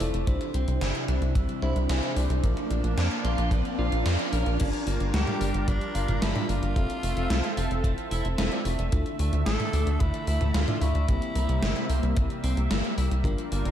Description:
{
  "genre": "synthwave",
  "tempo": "111 BPM",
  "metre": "4/4",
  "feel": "straight",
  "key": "G dorian",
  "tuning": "A4 = 438 Hz",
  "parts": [
    { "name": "lush unison pad", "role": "sustained chords", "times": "0.0-13.7 s", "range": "C3 to E5", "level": "-33 LUFS", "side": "equal", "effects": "chorus, vintage 12-bit sampler grit, sidechain pumping" },
    { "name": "clean electric guitar", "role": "arpeggios", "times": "0.0-13.7 s", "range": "E3 to Bb4", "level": "-37 LUFS", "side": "right 2 dB", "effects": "phaser, digital delay, slapback echo" },
    { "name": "mellow FM electric piano", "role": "stabs", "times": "0.0-13.7 s", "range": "Bb3 to F5", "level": "-35 LUFS", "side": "left 2 dB", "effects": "chorus, digital delay, slapback echo" },
    { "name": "tight sequencer bass", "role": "bass", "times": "0.0-13.7 s", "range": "F1 to F2", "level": "-26 LUFS", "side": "equal", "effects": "none" },
    { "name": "gated 80s digital drum machine", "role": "drums", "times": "0.0-13.7 s", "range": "crash cymbal, hi-hat, snare drum, toms", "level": "-32 LUFS", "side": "equal", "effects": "gated reverb, gated reverb snare, overdrive, high-pass filter on hats, high-pass filter on toms, high-pass filter on snare, high-pass filter on cymbals, high-pass filter on room" },
    { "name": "riser", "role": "sound effects", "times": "0.0-4.6 s", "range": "none", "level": "-38 LUFS", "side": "equal", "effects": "none" },
    { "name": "kick drum", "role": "drums", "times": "0.3-13.4 s", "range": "none", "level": "-27 LUFS", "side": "equal", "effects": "none" },
    { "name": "raspy tenor saxophone", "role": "melody", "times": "5.1-12.4 s", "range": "D4 to A4", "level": "-35 LUFS", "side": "equal", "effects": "digital delay, slapback echo" }
  ],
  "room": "moderate scoring stage reverb, RT60 1.9 s",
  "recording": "big arena sound",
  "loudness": "-24 LUFS",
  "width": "side -10 dB against mid",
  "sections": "0.0-4.6 A section; 4.6-13.7 B section",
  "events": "riser 0.0-4.6; filter sweep on analog synth pad 0.0-4.6; filter sweep on clean electric guitar 0.0-4.6",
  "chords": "0.3 Cadd9; 2.4 Bb; 4.6 Gm7; 6.8 Fmaj7; 8.9 Dmadd9; 11.1 C7"
}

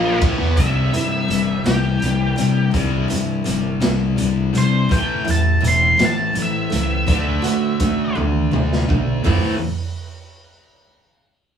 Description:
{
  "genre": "quiet-loud alternative rock",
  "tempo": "55 BPM (dotted quarters)",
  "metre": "6/8",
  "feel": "straight",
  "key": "A dorian",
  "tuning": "A4 = 440 Hz",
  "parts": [
    { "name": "octave-fuzz lead guitar", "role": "melody", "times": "0.0-8.2 s", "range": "G4 to C6", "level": "-22 LUFS", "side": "equal", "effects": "distortion" },
    { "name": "distorted electric guitar", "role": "riff", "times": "0.0-0.6 s", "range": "A2 to B3", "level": "-23 LUFS", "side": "left 2 dB", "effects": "overdrive" },
    { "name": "fuzz guitar", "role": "riff", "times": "0.0-9.6 s", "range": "A2 to E4", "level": "-25 LUFS", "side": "right 3 dB", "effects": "distortion" },
    { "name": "thick fuzz guitar", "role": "riff", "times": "0.0-9.5 s", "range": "A2 to D4", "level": "-22 LUFS", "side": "left 5 dB", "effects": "distortion" },
    { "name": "growling fingered electric bass", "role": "bass", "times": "0.0-9.6 s", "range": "E1 to C3", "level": "-23 LUFS", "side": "equal", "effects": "overdrive" },
    { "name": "raw garage drum kit", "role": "drums", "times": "0.2-9.4 s", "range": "hi-hat, kick drum, ride cymbal, snare drum, toms", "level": "-22 LUFS", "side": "equal", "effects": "none" },
    { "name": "picked steel-string acoustic guitar", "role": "arpeggios", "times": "0.6-9.5 s", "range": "A2 to F#4", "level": "-28 LUFS", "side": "right 4 dB", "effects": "none" }
  ],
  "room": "wet studio reverb, RT60 0.6 s",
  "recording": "band playing live in one room, small room ambience",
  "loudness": "-16 LUFS",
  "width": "side -8 dB against mid",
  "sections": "0.6-9.3 A section; 9.3-11.4 B section",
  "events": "lead electric guitar solo 0.6-9.3; drum fill 8.2-9.3",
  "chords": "0.2 A5; 0.6 Cadd9; 4.9 Am; 7.1 D; 9.3 Am"
}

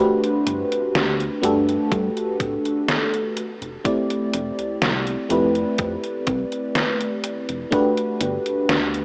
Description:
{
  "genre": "vaporwave",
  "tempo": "62 BPM",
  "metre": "4/4",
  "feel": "straight",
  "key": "G major",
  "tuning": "A4 = 438 Hz",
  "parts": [
    { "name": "FM electric piano with soft pad layer", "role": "accompaniment", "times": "0.0-9.0 s", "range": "A3 to D5", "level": "-21 LUFS", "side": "equal", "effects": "tremolo, analog chorus, tape echo" },
    { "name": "detuned 8-bit digital drum machine", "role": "drums", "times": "0.2-9.0 s", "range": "hi-hat, snare drum", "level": "-24 LUFS", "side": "equal", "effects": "overdrive, gated reverb" },
    { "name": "chorused synth bass", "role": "bass", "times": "0.5-9.0 s", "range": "D1 to G2", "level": "-27 LUFS", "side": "equal", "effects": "none" },
    { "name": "electronic kick drum", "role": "drums", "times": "1.9-7.9 s", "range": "none", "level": "-26 LUFS", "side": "equal", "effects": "overdrive" }
  ],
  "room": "light reverb",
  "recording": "cassette tape, small speaker sound",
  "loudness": "-19 LUFS",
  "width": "side -36 dB against mid",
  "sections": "0.0-9.0 A section",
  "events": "none",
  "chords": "0.0 Gmaj9; 3.4 Fmaj9#11; 7.7 Gmaj9"
}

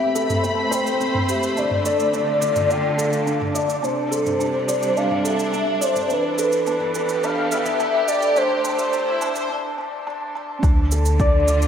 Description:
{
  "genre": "piano and strings electronica",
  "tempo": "106 BPM",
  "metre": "4/4",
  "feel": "straight",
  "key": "D dorian",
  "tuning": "A4 = 440 Hz",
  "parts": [
    { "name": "warm velvety synth lead", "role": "melody", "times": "0.0-11.7 s", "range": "B4 to A5", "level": "-22 LUFS", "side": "left 1 dB", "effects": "chorus, analog delay, shimmer reverb" },
    { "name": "rich studio string section", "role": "sustained chords", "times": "0.0-11.7 s", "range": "C3 to B5", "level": "-26 LUFS", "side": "right 1 dB", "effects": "low-pass filter, shimmer reverb" },
    { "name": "felt-muted upright piano", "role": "riff", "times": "0.0-11.7 s", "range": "C4 to D5", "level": "-24 LUFS", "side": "equal", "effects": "analog chorus, analog delay, shimmer reverb" },
    { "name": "warm sub bass", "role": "bass", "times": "0.0-11.7 s", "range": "A1 to E2", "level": "-19 LUFS", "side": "equal", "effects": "tube saturation, sidechain pumping, high-pass filter" },
    { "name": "electronic shaker and toms", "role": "drums", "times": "0.2-11.7 s", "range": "none", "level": "-30 LUFS", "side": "right 1 dB", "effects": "none" },
    { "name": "electronic kick drum", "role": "drums", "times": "10.6-11.3 s", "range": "none", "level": "-18 LUFS", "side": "equal", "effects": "none" }
  ],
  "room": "wet lush hall reverb, RT60 1.8 s",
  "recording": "dreamy mix soaked in reverb, high-pass filter",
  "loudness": "-18 LUFS",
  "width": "side -8 dB against mid",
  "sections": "0.0-10.6 A section; 10.6-11.7 B section",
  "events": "build-up 0.0-10.6; filter sweep on soft synth lead 0.0-10.6; break 9.5-10.6; drop 10.6-11.7",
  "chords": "0.0 Am7; 1.6 Dm; 3.8 C; 6.1 Em7; 8.4 Am7; 10.6 Dm"
}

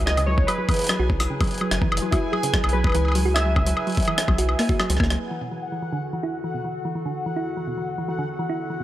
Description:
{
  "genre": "IDM",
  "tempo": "146 BPM",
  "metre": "4/4",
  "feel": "straight",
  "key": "unclear",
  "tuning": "A4 = 439 Hz",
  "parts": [
    { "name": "warbly lo-fi synth keys", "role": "melody", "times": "0.0-4.7 s", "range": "E4 to E5", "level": "-28 LUFS", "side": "right 1 dB", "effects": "chorus, vintage 12-bit sampler grit, analog delay" },
    { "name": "warbly tape-like pad", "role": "sustained chords", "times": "0.0-8.8 s", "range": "E2 to B4", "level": "-32 LUFS", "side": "left 1 dB", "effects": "chorus, built-in reverb" },
    { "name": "round analog bass", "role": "bass", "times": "0.0-5.2 s", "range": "F#1 to C#2", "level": "-23 LUFS", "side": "equal", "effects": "tube saturation" },
    { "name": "bubbling stepped-filter texture", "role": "texture", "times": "0.0-8.8 s", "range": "F#5 to G#5", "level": "-34 LUFS", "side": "equal", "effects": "chorus, built-in reverb, sidechain pumping" },
    { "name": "thumb-piano-like synth pluck", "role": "arpeggios", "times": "0.1-8.8 s", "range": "B2 to F#4", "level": "-28 LUFS", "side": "right 2 dB", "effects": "chorus, tape echo" },
    { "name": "jungle sampler-style drum kit", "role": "drums", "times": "0.1-5.2 s", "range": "hi-hat, rim click, woodblock", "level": "-26 LUFS", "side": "left 1 dB", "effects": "overdrive, low-pass filter on cymbals, low-pass filter on hats, low-pass filter on perc, low-pass filter on snare, low-pass filter on room" },
    { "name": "electronic kick drum", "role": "drums", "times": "0.4-5.1 s", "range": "none", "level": "-23 LUFS", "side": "equal", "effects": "overdrive" }
  ],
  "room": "light reverb",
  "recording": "dry, gritty hardware recording",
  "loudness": "-21 LUFS",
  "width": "side -13 dB against mid",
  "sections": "0.0-5.2 A section; 5.2-8.8 B section",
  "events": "drum fill 4.6-5.2; filter sweep on synth arpeggio sound 5.2-8.8",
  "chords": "0.0 F#9sus4; 5.2 E9sus4"
}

